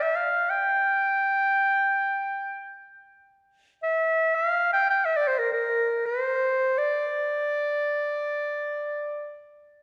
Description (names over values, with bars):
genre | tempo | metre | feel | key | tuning
Turkish makam ensemble | free time | none | none | G makam huseyni | A4 = 440 Hz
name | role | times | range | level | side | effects
clear clarinet | solo | 0.0-9.5 s | Bb4 to G5 | -25 LUFS | equal | none
room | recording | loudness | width
wet concert hall reverb, RT60 2.0 s | recorded in a church or concert hall | -25 LUFS | mono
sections
0.0-9.8 A section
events
none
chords
none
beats
free time